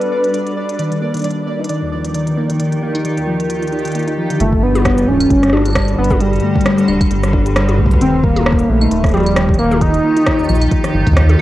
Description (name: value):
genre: IDM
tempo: 133 BPM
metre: 4/4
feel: swing 56% on 16ths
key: unclear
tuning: A4 = 440 Hz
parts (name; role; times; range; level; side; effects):
- warm velvety synth lead; melody; 0.0-0.6, 4.4-11.2 s; G3 to B4; -16 LUFS; equal; chorus, cassette tape, tape echo
- granular cloud pad; sustained chords; 0.0-11.4 s; D3 to Bb5; -22 LUFS; equal; built-in reverb, cassette tape
- organic electronic drum kit; drums; 0.0-11.4 s; cabasa, claves, hi-hat, rim click, toms; -21 LUFS; equal; overdrive
- pulsing gated texture; texture; 0.0-4.4 s; D5; -28 LUFS; right 3 dB; chorus, built-in reverb, cassette tape
- harp-like synth pluck; arpeggios; 0.8-11.4 s; Eb2 to G4; -19 LUFS; left 1 dB; chorus, cassette tape, tape echo
- rubbery square bass; bass; 4.4-11.4 s; D1 to Eb2; -16 LUFS; equal; tube saturation
- electronic kick drum; drums; 4.5-11.3 s; none; -17 LUFS; equal; overdrive
room: light reverb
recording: home recording on cassette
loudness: -12 LUFS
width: side -15 dB against mid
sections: 0.0-4.4 A section; 4.4-11.4 B section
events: none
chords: 0.0 Gmaj7; 0.8 Ebadd9; 4.4 Gmaj7; 8.0 Ebadd9